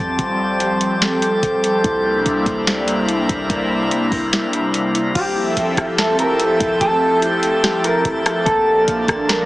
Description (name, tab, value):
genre	hip hop, atmospheric cloud-rap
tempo	145 BPM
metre	4/4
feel	half-time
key	F major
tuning	A4 = 439 Hz
part	airy breathy pad	sustained chords	0.0-9.5 s	C3 to E5	-20 LUFS	equal	chorus, phaser, sidechain pumping
part	concert harp	arpeggios	0.0-9.5 s	A3 to A5	-23 LUFS	right 1 dB	digital delay
part	clean 808-style bass	bass	0.0-9.5 s	F1 to E2	-27 LUFS	equal	none
part	drifting glass-harmonics texture	texture	0.0-9.5 s	Bb3 to Bb5	-24 LUFS	equal	chorus, built-in reverb
part	booming analog drum machine	drums	0.2-9.4 s	crash cymbal, hi-hat, kick drum, rim click, snare drum	-21 LUFS	equal	none
part	mellow electric guitar	melody	5.2-9.5 s	G4 to Bb4	-19 LUFS	equal	analog chorus, digital delay
room	moderate digital room reverb, RT60 1.2 s, digital ambience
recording	heavily compressed radio sound, small speaker sound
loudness	-15 LUFS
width	side -18 dB against mid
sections	0.0-5.2 A section; 5.2-9.5 B section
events	kick muted 4.3-5.2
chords	0.0 Am7; 1.8 C7; 5.2 Fmaj9; 8.5 Bbmaj7